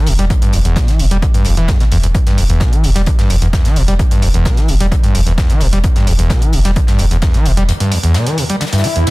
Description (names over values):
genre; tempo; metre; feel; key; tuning
driving peak-time techno; 130 BPM; 4/4; straight; E minor; A4 = 440 Hz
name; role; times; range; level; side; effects
screaming distorted acid line; riff; 0.0-9.1 s; E2 to G3; -16 LUFS; equal; distortion, chorus, sidechain pumping, digital delay
saturated sub bass; bass; 0.1-7.7 s; E1; -14 LUFS; equal; sidechain pumping, low-pass filter
electronic hi-hat; drums; 0.1-9.1 s; none; -25 LUFS; right 2 dB; none
modern studio drum kit; drums; 0.1-9.1 s; hi-hat, snare drum; -28 LUFS; left 3 dB; sidechain pumping on hats, high-pass filter on hats, high-pass filter on snare, high-pass filter on room
electronic kick drum; drums; 0.3-7.3 s; none; -14 LUFS; equal; none
swell; sound effects; 8.7-9.1 s; none; -18 LUFS; left 1 dB; none
room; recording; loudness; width
light reverb, digital ambience; dense, heavily limited modern master; -10 LUFS; side -21 dB against mid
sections
0.0-9.1 A section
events
swell 8.7-9.1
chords
0.0 Em